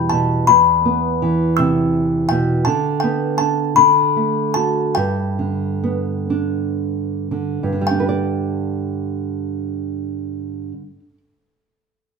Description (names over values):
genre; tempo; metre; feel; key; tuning
children's music, lullaby; 35-56 BPM (dotted quarters); 6/8; rubato; G major; A4 = 440 Hz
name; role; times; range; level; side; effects
music box; melody; 0.0-11.0 s; G5 to E6; -17 LUFS; left 5 dB; none
nylon-string guitar; accompaniment; 0.0-11.2 s; E2 to D5; -19 LUFS; right 3 dB; none
room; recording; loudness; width
wet large studio reverb, RT60 0.9 s; band playing live in one room; -16 LUFS; side -5 dB against mid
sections
0.0-7.9 A section; 7.9-11.2 B section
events
slowing down 2.7-7.9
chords
0.0 Em; 2.7 Gadd9/D; 3.8 D; 5.0 G; 7.9 G5